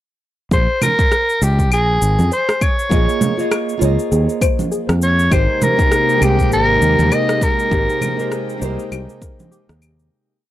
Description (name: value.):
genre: sunset chillout.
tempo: 100 BPM.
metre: 4/4.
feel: swing 58% on 16ths.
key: Bb dorian.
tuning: A4 = 440 Hz.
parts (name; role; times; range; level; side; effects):
growling soprano saxophone; melody; 0.5-8.3 s; G4 to Eb5; -17 LUFS; equal; tape echo.
soft round pluck; arpeggios; 0.5-9.7 s; G4 to Db5; -27 LUFS; left 2 dB; lush chorus, tape echo.
fretless electric bass; bass; 0.5-10.1 s; Ab1 to F2; -16 LUFS; equal; none.
electronic cabasa, claves and rim click; drums; 0.5-10.1 s; none; -24 LUFS; left 1 dB; overdrive.
electronic kick drum; drums; 0.5-9.4 s; none; -18 LUFS; equal; overdrive.
congas; percussion; 0.8-9.5 s; none; -20 LUFS; right 3 dB; none.
nylon-string guitar; accompaniment; 2.9-10.1 s; Ab3 to Eb5; -22 LUFS; right 1 dB; auto-pan, tape echo.
airy breathy pad; sustained chords; 5.3-10.1 s; C3 to G4; -21 LUFS; equal; chorus.
room: little or no reverb.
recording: dry, gritty hardware recording.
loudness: -13 LUFS.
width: side -13 dB against mid.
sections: 0.5-10.1 groove.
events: filter sweep on synth pluck 0.5-10.1; fade-out 6.9-10.1.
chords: 0.5 Bbm11; 5.3 Abmaj9.